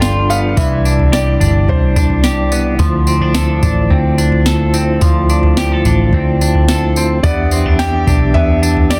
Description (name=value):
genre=dream pop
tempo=108 BPM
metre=4/4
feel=straight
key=D dorian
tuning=A4 = 440 Hz
part: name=felt-muted upright piano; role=melody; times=0.0-2.5, 7.2-9.0 s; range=C5 to G5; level=-24 LUFS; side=equal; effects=tape echo, shimmer reverb
part: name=mellow tonewheel organ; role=sustained chords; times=0.0-9.0 s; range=C3 to E5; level=-20 LUFS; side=equal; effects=fast rotary speaker, shimmer reverb
part: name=semi-hollow electric guitar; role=arpeggios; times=0.0-9.0 s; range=E3 to A4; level=-22 LUFS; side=equal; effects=subtle chorus, tape echo, shimmer reverb
part: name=vintage muted fingered electric bass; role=bass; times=0.0-9.0 s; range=G1 to E2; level=-18 LUFS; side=equal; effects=none
part: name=soft vintage rhythm box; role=drums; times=0.0-9.0 s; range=kick drum, snare drum, tambourine, toms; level=-18 LUFS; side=equal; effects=overdrive
room=light reverb, digital ambience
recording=dense, heavily limited modern master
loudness=-13 LUFS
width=mono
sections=0.0-9.0 A section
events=none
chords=0.0 G7; 0.6 Cmaj9; 2.8 Dm7; 7.2 Em7